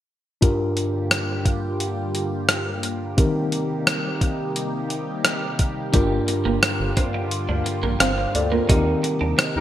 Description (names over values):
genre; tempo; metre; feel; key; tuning
1980s-style pop; 87 BPM; 4/4; straight; G minor; A4 = 440 Hz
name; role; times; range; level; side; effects
mellow tine electric piano; accompaniment; 0.4-9.6 s; G2 to F5; -24 LUFS; left 1 dB; fast stereo tremolo
phased analog pad; sustained chords; 0.8-9.6 s; C3 to G4; -29 LUFS; right 1 dB; phaser, chorus
gated 80s digital drum machine; drums; 0.4-9.5 s; hi-hat, kick drum, rim click; -20 LUFS; equal; gated reverb
twelve-string electric guitar; riff; 5.9-9.5 s; G3 to Eb4; -28 LUFS; right 6 dB; analog chorus, digital delay
rubbery square bass; bass; 5.9-9.6 s; G1 to G2; -26 LUFS; equal; none
analog synth brass; stabs; 9.6 s; G3 to Bb4; -21 LUFS; left 1 dB; chorus
room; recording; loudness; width
moderate plate reverb, RT60 2.4 s; bright 1980s-style digital production; -20 LUFS; side -12 dB against mid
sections
0.4-9.6 A section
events
band accent 8.7-9.6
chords
0.4 Gm7; 3.2 Eb6; 5.9 Gm7; 8.7 Eb6